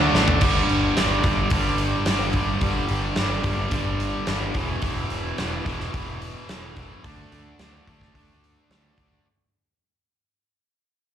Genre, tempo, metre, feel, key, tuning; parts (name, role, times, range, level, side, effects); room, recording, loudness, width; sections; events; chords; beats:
hard rock; 109 BPM; 4/4; straight; A4 = 440 Hz
overdriven electric guitar; riff; 0.0-9.2 s; E2 to D4; -27 LUFS; right 9 dB; slapback echo
tight distorted guitar; riff; 0.0-9.2 s; E2 to D4; -29 LUFS; left 12 dB; distortion
fuzz picked electric bass; bass; 0.0-9.2 s; E1 to D2; -27 LUFS; equal; overdrive
big rock drum kit; drums; 0.1-9.1 s; crash cymbal, hi-hat, kick drum, snare drum, toms; -25 LUFS; equal
little or no reverb; live gig heard through the venue's PA, club reverb; -21 LUFS; side -9 dB against mid
0.4-9.3 A section
drum fill 0.1; fade-out 0.4-9.3
0.4 G5; 4.6 E5; 7.0 D5
| 0.42 0.97 1.52 2.08 | 2.63 3.18 3.73 4.28 | 4.83 5.38 5.94 6.49 | 7.04 7.59 8.15 8.70